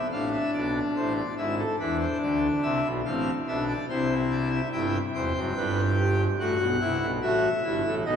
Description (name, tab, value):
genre	classical, baroque-style 3-part fugue for pipe organ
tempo	72 BPM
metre	4/4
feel	straight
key	unclear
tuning	A4 = 438 Hz
part	pipe organ, full organ	solo	0.0-8.2 s	E1 to G5	-24 LUFS	left 1 dB	none
room	wet cathedral reverb, RT60 5.5 s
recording	small room ambience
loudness	-24 LUFS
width	side -7 dB against mid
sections	0.0-8.2 A section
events	none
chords	0.0 Bm7b5; 1.4 E7/G#; 3.0 Am; 4.7 Em; 6.4 F#m7b5/A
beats	0.52 | 1.36 2.20 3.03 3.87 | 4.70 5.54 6.38 7.22 | 8.06